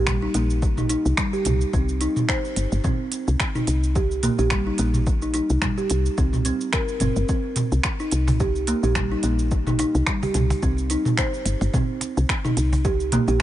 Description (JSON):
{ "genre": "organic downtempo", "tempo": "108 BPM", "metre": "4/4", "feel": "swing 56% on 16ths", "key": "C minor", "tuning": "A4 = 440 Hz", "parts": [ { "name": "kalimba", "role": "arpeggios", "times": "0.0-13.4 s", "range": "G3 to C5", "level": "-25 LUFS", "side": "right 1 dB", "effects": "digital delay" }, { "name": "woody FM bass", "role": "bass", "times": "0.0-13.4 s", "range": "G1 to C2", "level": "-22 LUFS", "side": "left 1 dB", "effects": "sidechain pumping" }, { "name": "electronic kick drum", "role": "drums", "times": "0.1-13.0 s", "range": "none", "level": "-25 LUFS", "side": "left 1 dB", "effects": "none" }, { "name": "organic electronic drum kit", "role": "drums", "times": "0.1-13.4 s", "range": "cabasa, finger snaps, hi-hat, toms", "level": "-26 LUFS", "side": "right 2 dB", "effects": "none" }, { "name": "cajon", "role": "percussion", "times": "7.6-13.4 s", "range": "none", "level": "-28 LUFS", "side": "right 2 dB", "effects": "none" } ], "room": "little or no reverb", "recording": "nothing above 10.4 kHz", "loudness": "-20 LUFS", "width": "side -13 dB against mid", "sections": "0.0-13.4 A section", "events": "none", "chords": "0.0 Cm7", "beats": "0.07 | 0.62 1.18 1.74 2.29 | 2.85 3.40 3.96 4.51 | 5.07 5.62 6.18 6.74 | 7.29 7.85 8.40 8.96 | 9.51 10.07 10.62 11.18 | 11.73 12.29 12.85 13.40" }